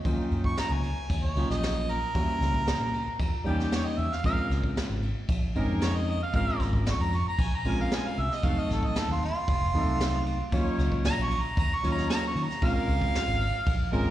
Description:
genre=straight-eighth soul blues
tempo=115 BPM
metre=4/4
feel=straight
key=Bb minor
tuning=A4 = 440 Hz
part: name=warm harmonica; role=second line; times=0.0-14.1 s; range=F4 to Db6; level=-31 LUFS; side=right 2 dB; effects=overdrive, slapback echo
part: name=tine electric piano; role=accompaniment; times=0.0-14.1 s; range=Gb3 to Gb4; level=-32 LUFS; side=equal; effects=slapback echo
part: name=warm horn section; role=sustained chords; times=0.0-14.1 s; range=Eb3 to Db5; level=-38 LUFS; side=left 1 dB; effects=none
part: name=vintage muted fingered electric bass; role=bass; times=0.0-14.1 s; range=F1 to Eb3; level=-29 LUFS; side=equal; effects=none
part: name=jazz brush drum kit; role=drums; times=0.1-14.1 s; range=kick drum, ride cymbal, snare drum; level=-30 LUFS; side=equal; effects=none
room=small room ambience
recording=live gig heard through the venue's PA, recital hall reverb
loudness=-25 LUFS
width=side -13 dB against mid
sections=0.0-14.1 A section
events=harmonica solo 0.0-14.1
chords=0.1 Ebm7; 2.2 Edim7; 4.2 Bbm7; 8.4 F7b9; 10.5 Ebm7; 12.6 Bbm7

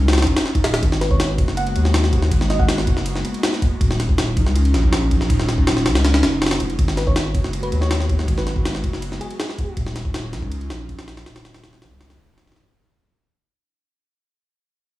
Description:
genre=drum and bass, jungle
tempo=161 BPM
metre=4/4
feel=straight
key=G# minor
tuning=A4 = 438 Hz
part: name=airy breathy pad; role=sustained chords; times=0.0-12.7 s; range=F#3 to F#4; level=-26 LUFS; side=equal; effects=chorus
part: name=saturated sub bass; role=bass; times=0.0-12.7 s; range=D#1 to D#2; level=-20 LUFS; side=equal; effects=tube saturation
part: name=jungle sampler-style drum kit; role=drums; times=0.1-12.7 s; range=kick drum, ride cymbal, snare drum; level=-20 LUFS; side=equal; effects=small room ambience
part: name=bell-like FM electric piano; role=melody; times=1.0-3.0, 7.0-9.8 s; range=G#4 to F#5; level=-30 LUFS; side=right 1 dB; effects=chorus, tremolo, dub echo
room=little or no reverb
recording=dry, gritty hardware recording, transformer saturation, vinyl crackle, studio reverb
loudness=-17 LUFS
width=side -16 dB against mid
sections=0.0-12.8 A section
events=drop 0.0-12.8; fade-out 6.8-12.8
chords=0.0 D#m9; 0.8 G#m9; 3.8 D#m9; 6.8 G#m7; 9.8 D#m9

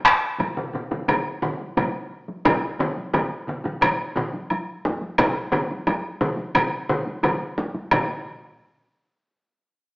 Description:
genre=japanese traditional, taiko drum ensemble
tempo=88 BPM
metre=4/4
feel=straight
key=none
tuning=none
part: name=taiko ensemble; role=percussion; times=0.0-8.6 s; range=none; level=-24 LUFS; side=equal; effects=none
part: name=taiko ensemble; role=percussion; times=0.1-8.6 s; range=none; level=-28 LUFS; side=right 1 dB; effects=none
part: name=taiko ensemble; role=percussion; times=0.4-8.2 s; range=none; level=-32 LUFS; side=equal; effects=none
part: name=woodblock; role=percussion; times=0.4-8.2 s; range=none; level=-24 LUFS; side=equal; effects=none
part: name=taiko ensemble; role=percussion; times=2.5-8.2 s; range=none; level=-25 LUFS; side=equal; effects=none
room=wet stone room reverb, RT60 1.0 s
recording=band playing live in one room, small speaker sound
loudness=-21 LUFS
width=side -25 dB against mid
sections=0.0-7.9 A section; 7.9-9.9 B section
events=none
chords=none

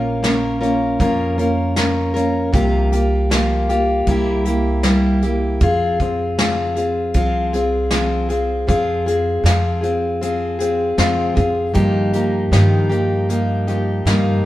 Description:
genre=acoustic folk duo or small band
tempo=78 BPM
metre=4/4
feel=straight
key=F minor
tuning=A4 = 440 Hz
part: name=picked plugged-in steel-string acoustic guitar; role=accompaniment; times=0.0-14.5 s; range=G2 to Bb4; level=-18 LUFS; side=left 1 dB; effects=none
part: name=upright bass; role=bass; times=0.0-14.4 s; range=Bb1 to G2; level=-20 LUFS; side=right 1 dB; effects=none
part: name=soft brush drum kit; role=drums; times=0.2-14.2 s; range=hi-hat, kick drum, snare drum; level=-21 LUFS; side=equal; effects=none
room=moderate stone room reverb, RT60 1.3 s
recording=band playing live in one room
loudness=-15 LUFS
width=side -15 dB against mid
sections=0.0-8.7 A section; 8.7-14.5 B section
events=none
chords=0.0 Bbm; 2.5 C7sus4; 4.1 C7; 5.6 Fm; 11.8 Ebadd9/G

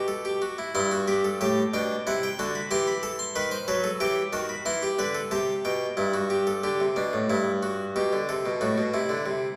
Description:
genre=classical, baroque-style 3-part fugue for harpsichord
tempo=92 BPM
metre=4/4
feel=straight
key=unclear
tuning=A4 = 440 Hz
part: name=harpsichord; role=solo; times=0.0-9.6 s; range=G2 to C6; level=-27 LUFS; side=equal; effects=none
room=wet recital hall reverb, RT60 1.5 s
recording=recorded in a church or concert hall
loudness=-27 LUFS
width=mono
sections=0.8-6.0 A section; 6.0-9.6 B section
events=none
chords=0.0 B5; 0.8 Em/G; 2.1 F#m7b5/C; 3.4 B7/D#; 4.7 Em; 6.0 G

